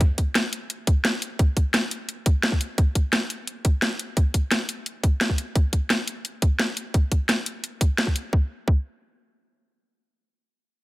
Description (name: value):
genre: dark technical drum and bass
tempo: 173 BPM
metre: 4/4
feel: straight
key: none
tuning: none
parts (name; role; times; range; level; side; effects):
- drum and bass drum kit; drums; 0.0-8.2 s; hi-hat, snare drum; -24 LUFS; equal; overdrive
- electronic kick drum; drums; 0.0-8.8 s; none; -20 LUFS; equal; overdrive
room: digital ambience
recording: none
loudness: -21 LUFS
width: side -18 dB against mid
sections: 0.0-8.3 A section; 8.3-10.8 B section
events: none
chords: none